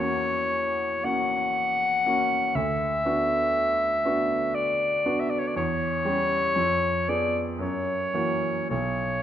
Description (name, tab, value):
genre	classical, romantic duo for clarinet and grand piano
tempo	52-61 BPM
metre	3/4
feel	rubato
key	B minor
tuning	A4 = 440 Hz
part	clear clarinet	melody	0.0-9.2 s	C#5 to F#5	-24 LUFS	left 1 dB	none
part	clear concert grand piano	accompaniment	0.0-9.2 s	B1 to Ab4	-28 LUFS	right 1 dB	none
room	moderate recital hall reverb, RT60 1.3 s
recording	none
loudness	-23 LUFS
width	side -10 dB against mid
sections	0.0-9.2 A section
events	none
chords	0.0 F#7/E; 2.5 Bm/D; 5.6 C#dim/E; 6.6 Fdim; 7.6 F#7; 8.7 N.C.